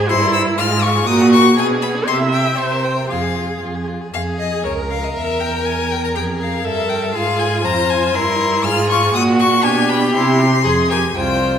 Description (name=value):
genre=quick classical-period movement for string quartet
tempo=120 BPM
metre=2/4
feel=straight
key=F minor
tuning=A4 = 441 Hz
part: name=clear violin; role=second line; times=0.0-11.6 s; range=B3 to C5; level=-22 LUFS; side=left 2 dB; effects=none
part: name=rich viola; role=accompaniment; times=0.0-11.6 s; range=D4 to E5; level=-21 LUFS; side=right 2 dB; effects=none
part: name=rich cello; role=bass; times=0.0-11.6 s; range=C2 to C3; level=-19 LUFS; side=right 2 dB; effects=none
part: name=clear violin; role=melody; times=0.1-11.6 s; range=Db5 to F6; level=-19 LUFS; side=left 6 dB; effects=none
room=wet recital hall reverb, RT60 1.6 s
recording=recorded in a church or concert hall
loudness=-14 LUFS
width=side -8 dB against mid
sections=0.0-4.1 A section; 4.1-11.6 A section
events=none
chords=0.1 C7/G; 0.6 Fm/Ab; 1.1 Gb/Bb; 1.6 Bm6; 2.1 C; 2.6 C7; 3.1 Fm; 4.6 Bbm/Db; 5.2 Edim; 6.2 Fm; 6.7 Edim/G; 7.2 Fm/Ab; 8.1 C7/G; 8.6 Fm/Ab; 9.1 Gb/Bb; 9.6 G/B; 10.1 C; 10.7 Fm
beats=| 0.08 0.57 | 1.07 1.57 | 2.07 2.58 | 3.10 3.62 | 4.14 4.64 | 5.15 5.65 | 6.16 6.66 | 7.15 7.65 | 8.15 8.64 | 9.14 9.64 | 10.14 10.65 | 11.16